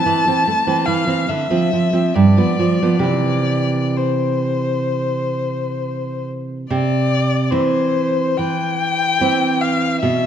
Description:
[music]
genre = romantic duo for violin and classical guitar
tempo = 63-75 BPM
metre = 4/4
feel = rubato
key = C major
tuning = A4 = 440 Hz
[part]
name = warm violin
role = melody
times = 0.0-10.3 s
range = C5 to A5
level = -20 LUFS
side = left 4 dB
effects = none
[part]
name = nylon-string guitar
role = accompaniment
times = 0.0-10.3 s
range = G2 to C4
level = -18 LUFS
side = right 3 dB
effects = none
[sound]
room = wet recital hall reverb, RT60 1.6 s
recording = dark, warm production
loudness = -16 LUFS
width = side -9 dB against mid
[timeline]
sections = 0.0-6.7 A section; 6.7-10.3 A section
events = none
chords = 0.0 Am; 1.3 Dm7; 2.1 G7; 3.0 C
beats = 0.46 1.28 2.14 | 3.03 3.97 4.91 5.82 | 6.71 7.52 8.38 9.22 | 10.03

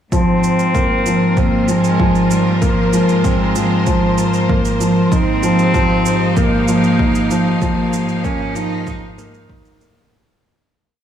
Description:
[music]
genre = piano and strings electronica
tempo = 96 BPM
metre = 4/4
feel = straight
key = Ab major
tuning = A4 = 441 Hz
[part]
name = warm cello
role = melody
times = 0.1-9.2 s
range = F3 to Eb4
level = -19 LUFS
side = equal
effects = low-pass filter
[part]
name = clear symphonic string section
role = sustained chords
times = 0.1-10.1 s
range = Bb3 to F5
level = -25 LUFS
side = left 1 dB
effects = none
[part]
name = felt-muted upright piano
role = riff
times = 0.1-10.1 s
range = F3 to Eb4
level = -16 LUFS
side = equal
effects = none
[part]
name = dark symphonic cello section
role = bass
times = 0.1-10.1 s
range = Ab2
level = -24 LUFS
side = right 1 dB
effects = sidechain pumping
[part]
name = electronic kick drum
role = drums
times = 0.1-9.6 s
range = none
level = -20 LUFS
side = equal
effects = overdrive
[part]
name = shaker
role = drums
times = 0.1-9.9 s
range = none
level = -31 LUFS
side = right 7 dB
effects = overdrive
[sound]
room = light reverb, small room ambience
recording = studio reverb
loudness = -13 LUFS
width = side -9 dB against mid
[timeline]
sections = 0.1-10.1 build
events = build-up 0.1-10.1; fade-out 6.8-10.1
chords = 0.1 Ab69; 5.1 Ebadd9/Ab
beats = | 0.12 0.75 1.37 2.00 | 2.62 3.25 3.87 4.50 | 5.12 5.75 6.37 7.00 | 7.62 8.25 8.87 9.50

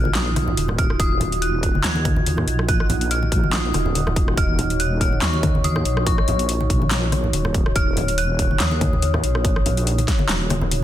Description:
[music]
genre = deep dubstep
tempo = 142 BPM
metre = 4/4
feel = swing 55% on 16ths, half-time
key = Eb minor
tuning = A4 = 440 Hz
[part]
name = dark detuned synth bell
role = melody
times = 0.0-10.7 s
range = Db6 to Ab6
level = -28 LUFS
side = equal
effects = chorus, dub echo
[part]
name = dark analog pad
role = sustained chords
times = 0.0-10.8 s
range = Eb4 to Db5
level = -27 LUFS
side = equal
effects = chorus, phaser
[part]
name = deep soft wobble bass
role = bass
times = 0.0-10.8 s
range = Eb1 to Eb2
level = -22 LUFS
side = equal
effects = chorus
[part]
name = congas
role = percussion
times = 0.1-10.8 s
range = none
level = -26 LUFS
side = left 1 dB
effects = none
[part]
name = dubstep drum kit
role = drums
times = 0.2-10.8 s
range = handclaps, hi-hat, rim click, snare drum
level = -26 LUFS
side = left 1 dB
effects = none
[part]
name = electronic kick drum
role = drums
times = 0.8-10.2 s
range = none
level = -21 LUFS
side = equal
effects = none
[sound]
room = little or no reverb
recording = dense, heavily limited modern master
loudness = -18 LUFS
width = side -12 dB against mid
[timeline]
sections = 0.0-10.8 A section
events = none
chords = 0.0 Ebmadd9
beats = 0.15 0.57 | 1.00 1.42 1.84 2.26 | 2.69 3.11 3.53 3.95 | 4.38 4.80 5.22 5.64 | 6.07 6.49 6.91 7.33 | 7.76 8.18 8.60 9.02 | 9.45 9.87 10.29 10.71

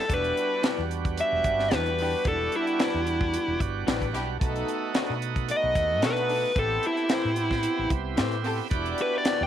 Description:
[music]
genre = straight-eighth soul blues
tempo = 111 BPM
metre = 4/4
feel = swing 54% on 16ths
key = E minor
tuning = A4 = 440 Hz
[part]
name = dark smooth lead guitar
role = melody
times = 0.0-9.5 s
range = E4 to G5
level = -26 LUFS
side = left 1 dB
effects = overdrive
[part]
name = bright tonewheel organ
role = accompaniment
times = 0.0-9.5 s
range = G3 to G4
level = -32 LUFS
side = right 12 dB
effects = overdrive, slow rotary speaker
[part]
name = rich studio string section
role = sustained chords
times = 0.1-9.2 s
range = C4 to D5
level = -35 LUFS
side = left 2 dB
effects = none
[part]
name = woody fretless electric bass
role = bass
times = 0.1-9.5 s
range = E1 to B2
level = -32 LUFS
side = equal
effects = ensemble chorus
[part]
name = tight funk drum kit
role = drums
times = 0.1-9.4 s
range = hi-hat, kick drum, snare drum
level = -29 LUFS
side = right 1 dB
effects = none
[part]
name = electric guitar through a small old amp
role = stabs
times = 0.6-9.4 s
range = D#3 to G4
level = -34 LUFS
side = left 12 dB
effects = none
[sound]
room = light reverb, small room ambience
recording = 1960s-style stereo with parts hard left and right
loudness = -24 LUFS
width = side -10 dB against mid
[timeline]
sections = 0.0-9.5 A section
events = lead electric guitar solo 0.0-9.5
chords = 0.1 Em7; 4.4 B7#9; 6.6 Am7; 8.7 Em7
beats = | 0.10 0.64 1.18 1.72 | 2.26 2.80 3.34 3.88 | 4.41 4.95 5.49 6.03 | 6.57 7.11 7.64 8.18 | 8.72 9.26

